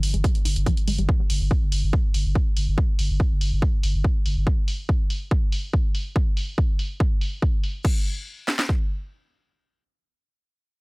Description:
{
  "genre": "driving peak-time techno",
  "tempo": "142 BPM",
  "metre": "4/4",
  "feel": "straight",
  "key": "unclear",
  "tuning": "A4 = 440 Hz",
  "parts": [
    { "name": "saturated sub bass", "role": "bass", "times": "0.0-4.5 s", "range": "G1", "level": "-24 LUFS", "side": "equal", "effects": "overdrive, sidechain pumping, low-pass filter" },
    { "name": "punchy analog drum machine", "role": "drums", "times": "0.0-7.9 s", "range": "crash cymbal, hi-hat", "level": "-33 LUFS", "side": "equal", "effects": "low-pass filter on hats, low-pass filter on cymbals" },
    { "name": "tight sequenced synth", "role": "riff", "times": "0.1-1.0 s", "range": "F3 to Eb4", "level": "-32 LUFS", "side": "left 1 dB", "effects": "chorus, phaser, overdrive, cassette tape, sidechain pumping, tape echo" },
    { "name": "techno drum kit", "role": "drums", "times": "0.2-8.8 s", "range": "kick drum, snare drum", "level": "-22 LUFS", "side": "equal", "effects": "none" }
  ],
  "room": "little or no reverb",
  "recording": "none",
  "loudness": "-21 LUFS",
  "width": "side -28 dB against mid",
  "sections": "0.0-7.8 A section; 7.8-10.8 B section",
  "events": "none",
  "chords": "none"
}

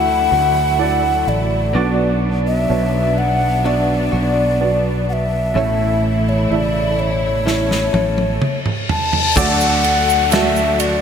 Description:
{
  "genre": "pop ballad",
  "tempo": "63 BPM",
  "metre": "4/4",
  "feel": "straight",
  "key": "D major",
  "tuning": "A4 = 439 Hz",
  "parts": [
    { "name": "breathy alto ocarina", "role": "melody", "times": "0.0-11.0 s", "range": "C#5 to A5", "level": "-18 LUFS", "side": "left 2 dB", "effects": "none" },
    { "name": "warm grand piano", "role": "accompaniment", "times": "0.0-11.0 s", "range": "A2 to E5", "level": "-22 LUFS", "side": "right 6 dB", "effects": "ensemble chorus" },
    { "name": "rich studio string section", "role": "sustained chords", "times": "0.0-11.0 s", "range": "B2 to F#4", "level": "-25 LUFS", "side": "equal", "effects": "none" },
    { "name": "direct-recorded clean electric guitar", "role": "arpeggios", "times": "0.0-11.0 s", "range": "A2 to A4", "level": "-27 LUFS", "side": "left 5 dB", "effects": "tremolo, ping-pong delay" },
    { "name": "fretless electric bass", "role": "bass", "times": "0.0-11.0 s", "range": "A1 to D2", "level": "-20 LUFS", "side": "equal", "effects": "none" },
    { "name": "modern studio drum kit", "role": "drums", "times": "7.5-11.0 s", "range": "crash cymbal, kick drum, ride cymbal, snare drum, toms", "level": "-20 LUFS", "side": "right 1 dB", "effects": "gated reverb" },
    { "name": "reverse cymbal and downlifter", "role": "sound effects", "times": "8.3-11.0 s", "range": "none", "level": "-22 LUFS", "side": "left 2 dB", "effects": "none" },
    { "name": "egg shaker", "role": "percussion", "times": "9.4-11.0 s", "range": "none", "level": "-31 LUFS", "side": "right 9 dB", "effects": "none" }
  ],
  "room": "moderate lush hall reverb, RT60 2.8 s",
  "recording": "bright 1980s-style digital production",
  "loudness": "-14 LUFS",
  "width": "side -7 dB against mid",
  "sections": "0.0-9.4 A section; 9.4-11.0 B section",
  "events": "drum fill 7.5-9.4; reverse cymbal 8.3-9.4",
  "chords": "0.0 Dadd9; 1.7 Bmadd9; 5.6 A; 9.4 D"
}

